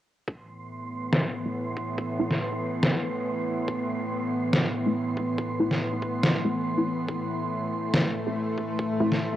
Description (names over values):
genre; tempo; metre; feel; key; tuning
deep dubstep; 141 BPM; 4/4; swing 54% on 16ths, half-time; A minor; A4 = 441 Hz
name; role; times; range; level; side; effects
bowed-like drone; sustained chords; 0.6-9.4 s; A2 to B3; -29 LUFS; equal; built-in reverb, cassette tape
electronic kick drum; drums; 0.3-8.9 s; none; -36 LUFS; equal; high-pass filter on kick, cassette tape
wind-like tuned noise texture; texture; 0.4-9.4 s; C6; -37 LUFS; right 4 dB; built-in reverb, cassette tape
electronic snare drum; drums; 1.1-9.2 s; none; -24 LUFS; equal; low-pass filter on snare, cassette tape
filtered dub chord stab; stabs; 1.5-9.2 s; A3 to E4; -28 LUFS; equal; phaser, analog chorus, cassette tape, dub echo
room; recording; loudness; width
light reverb; home recording on cassette; -25 LUFS; side -12 dB against mid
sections
0.3-9.4 A section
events
filter sweep on synth stab 0.3-9.4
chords
0.3 Am